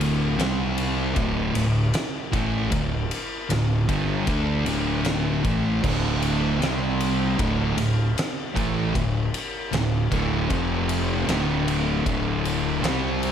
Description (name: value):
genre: stoner and doom metal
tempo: 77 BPM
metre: 4/4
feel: straight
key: D minor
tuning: A4 = 440 Hz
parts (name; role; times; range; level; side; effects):
- thick fuzz guitar; riff; 0.0-13.3 s; D2 to D4; -27 LUFS; left 7 dB; distortion
- thick fuzz guitar; riff; 0.0-13.3 s; D2 to D4; -26 LUFS; right 7 dB; distortion
- fuzz fingered electric bass; bass; 0.0-13.3 s; D1 to D2; -29 LUFS; equal; overdrive
- oversized low-tuned drum kit; drums; 0.0-13.3 s; crash cymbal, kick drum, ride cymbal, snare drum; -28 LUFS; equal; none
- fuzz guitar; riff; 5.8-13.3 s; D2 to C4; -29 LUFS; right 1 dB; distortion
room: little or no reverb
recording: none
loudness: -21 LUFS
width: side -8 dB against mid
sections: 0.0-13.3 A section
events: none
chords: 0.4 C5; 1.2 D5; 6.6 C5; 7.4 D5; 10.5 F5; 11.3 D5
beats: 0.40 1.17 1.95 | 2.73 3.51 4.28 5.06 | 5.84 6.61 7.39 8.17 | 8.95 9.72 10.50 11.28 | 12.05 12.83